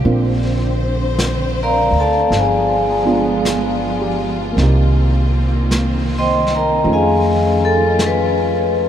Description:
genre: jazz ballad.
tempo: 53 BPM.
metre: 4/4.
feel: swing 66% on 8ths.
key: Bb major.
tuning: A4 = 440 Hz.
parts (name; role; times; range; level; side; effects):
dark grand piano; accompaniment; 0.0-8.9 s; Ab3 to Ab4; -24 LUFS; right 3 dB; none.
warm symphonic string section; sustained chords; 0.0-8.9 s; D3 to C5; -22 LUFS; right 1 dB; none.
upright bass; bass; 0.0-8.9 s; G1 to F2; -18 LUFS; equal; none.
vintage brush drum kit; drums; 0.1-8.9 s; brushed snare drum, hi-hat, snare drum; -27 LUFS; equal; none.
vibraphone with medium mallets; melody; 1.6-8.9 s; Ab4 to C6; -17 LUFS; left 2 dB; none.
room: moderate huge ambient reverb, RT60 8.3 s.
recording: in a vast, echoing space.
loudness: -14 LUFS.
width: side -10 dB against mid.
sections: 0.0-8.9 A section.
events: vibraphone solo 0.0-8.9.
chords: 0.1 Bbmaj9; 2.3 G7b9; 4.6 Cm7; 6.8 F7alt.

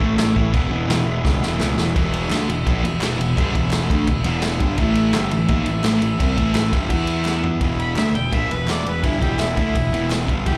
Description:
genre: garage rock duo or trio.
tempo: 169 BPM.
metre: 4/4.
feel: straight.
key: E major.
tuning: A4 = 440 Hz.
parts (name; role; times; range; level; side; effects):
combo organ; sustained chords; 0.0-10.6 s; E4 to E5; -34 LUFS; equal; none.
fuzz guitar; riff; 0.0-10.6 s; E2 to E4; -25 LUFS; equal; distortion.
fuzz picked electric bass; bass; 0.0-10.6 s; E1 to A2; -25 LUFS; equal; overdrive.
vintage drum kit; drums; 0.0-10.5 s; crash cymbal, kick drum, ride cymbal, snare drum, toms; -25 LUFS; equal; none.
group handclap; percussion; 0.2-10.2 s; none; -36 LUFS; equal; none.
overdriven harmonica; melody; 7.8-10.6 s; E4 to B5; -27 LUFS; equal; none.
room: little or no reverb.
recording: live gig heard through the venue's PA, club reverb.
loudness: -20 LUFS.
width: mono.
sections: 0.0-1.9 A section; 1.9-7.6 B section; 7.6-10.6 C section.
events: drum fill 1.2-1.9, 7.3-7.6; harmonica solo 7.6-10.6.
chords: 0.0 A; 0.5 E; 4.8 A5; 6.9 E5; 7.6 E.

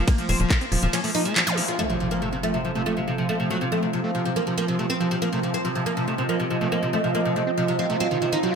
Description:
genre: psychedelic trance.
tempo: 140 BPM.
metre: 4/4.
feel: straight.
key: unclear.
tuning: A4 = 439 Hz.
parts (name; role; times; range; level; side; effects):
oud; melody; 0.0-8.5 s; C3 to F4; -26 LUFS; equal; phaser, sidechain pumping, dub echo.
pulsing gated texture; sustained chords; 0.0-8.6 s; F3 to C4; -30 LUFS; right 2 dB; chorus, built-in reverb, sidechain pumping.
tight sequencer bass; bass; 0.0-0.9 s; Eb1; -23 LUFS; equal; none.
screaming distorted acid line; riff; 0.1-8.5 s; Eb3 to F4; -27 LUFS; equal; distortion, chorus, auto-pan, vintage 12-bit sampler grit, sidechain pumping, dub echo.
drum and bass drum kit; drums; 0.1-1.8 s; handclaps, hi-hat, ride cymbal; -26 LUFS; equal; studio reverb.
electronic kick drum; drums; 0.1-0.6 s; none; -20 LUFS; equal; studio reverb.
zap, impact and swell; sound effects; 1.5-3.5, 8.0-8.6 s; none; -30 LUFS; right 2 dB; none.
warbly tape-like pad; texture; 2.7-8.6 s; F4 to F5; -30 LUFS; right 3 dB; chorus, built-in reverb, tremolo, sidechain pumping.
room: moderate digital room reverb, RT60 1.0 s, digital ambience.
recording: none.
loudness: -21 LUFS.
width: side -6 dB against mid.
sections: 0.0-1.8 A section; 1.8-8.6 B section.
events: drop 0.0-1.8; impact 1.8-3.5; swell 8.0-8.6.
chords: 0.0 F5.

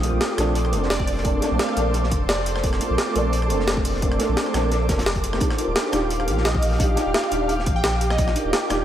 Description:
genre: liquid drum and bass.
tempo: 173 BPM.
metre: 4/4.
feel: swing 54% on 16ths.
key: Eb lydian.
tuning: A4 = 440 Hz.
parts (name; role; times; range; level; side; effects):
felt-muted upright piano; accompaniment; 0.0-8.8 s; A3 to Bb4; -26 LUFS; right 1 dB; ensemble chorus, diffuse ambient delay.
ethereal airy pad; sustained chords; 0.0-8.8 s; G4 to D6; -27 LUFS; right 1 dB; ensemble chorus, built-in reverb, sidechain pumping.
warm sub bass; bass; 0.0-8.8 s; Eb1 to Bb1; -24 LUFS; equal; tube saturation.
crunchy breakbeat drum kit; drums; 0.0-8.8 s; hi-hat, snare drum; -32 LUFS; equal; high-pass filter on hats, high-pass filter on snare, high-pass filter on room.
jungle sampler-style drum kit; drums; 0.0-8.8 s; hi-hat, rim click, snare drum; -27 LUFS; equal; none.
plucky unison lead; melody; 0.9-2.6, 6.5-8.6 s; D5 to G5; -29 LUFS; right 1 dB; tape echo.
electronic kick drum; drums; 1.0-8.3 s; none; -24 LUFS; equal; none.
room: moderate lush hall reverb, RT60 2.3 s.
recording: dreamy mix soaked in reverb.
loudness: -19 LUFS.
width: side -11 dB against mid.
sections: 0.0-8.8 A section.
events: none.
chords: 0.0 Bbmaj9; 5.4 Ebmaj9.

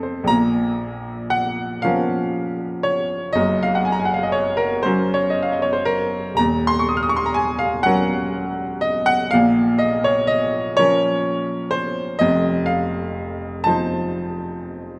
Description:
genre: classical, romantic nocturne for solo piano.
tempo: 38-42 BPM (dotted quarters).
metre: 6/8.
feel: rubato.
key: Bb minor.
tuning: A4 = 443 Hz.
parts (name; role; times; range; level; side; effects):
bright baby grand piano; solo; 0.0-15.0 s; Eb1 to F6; -20 LUFS; equal; none.
room: moderate recital hall reverb, RT60 1.8 s.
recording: dark, warm production.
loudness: -20 LUFS.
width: mono.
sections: 0.3-15.0 A section.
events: none.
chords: 0.3 Bbm; 3.4 Gb; 6.4 Ebm7; 9.3 Bbm; 12.2 F7.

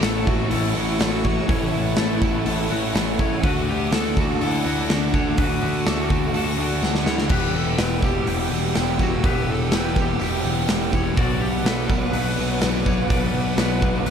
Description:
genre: rock, shoegaze and dream pop.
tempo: 124 BPM.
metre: 4/4.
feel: straight.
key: A mixolydian.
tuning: A4 = 440 Hz.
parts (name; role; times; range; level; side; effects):
fuzz lead guitar; melody; 0.0-14.1 s; D4 to B4; -29 LUFS; left 3 dB; distortion, slapback echo.
sweeping resonant pad; sustained chords; 0.0-14.1 s; G4 to E6; -34 LUFS; right 1 dB; chorus.
twangy electric guitar; arpeggios; 0.0-14.1 s; F#4 to D5; -33 LUFS; left 9 dB; lush chorus, slapback echo.
biting overdriven guitar; riff; 0.0-14.1 s; E2 to G4; -27 LUFS; right 13 dB; reverse reverb.
thick fuzz guitar; riff; 0.0-14.1 s; E2 to D4; -27 LUFS; left 11 dB; distortion, analog chorus.
fuzz picked electric bass; bass; 0.0-14.1 s; E1 to D2; -26 LUFS; right 1 dB; overdrive.
big rock drum kit; drums; 0.0-14.1 s; crash cymbal, hi-hat, kick drum, snare drum; -23 LUFS; equal; none.
tambourine; percussion; 0.0-14.1 s; none; -43 LUFS; right 12 dB; none.
room: little or no reverb.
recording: dark, warm production.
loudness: -19 LUFS.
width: side -7 dB against mid.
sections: 0.0-14.1 A section.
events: drum fill 6.8-7.3.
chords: 0.0 A6; 3.4 D; 7.3 Emadd9; 11.2 Bm.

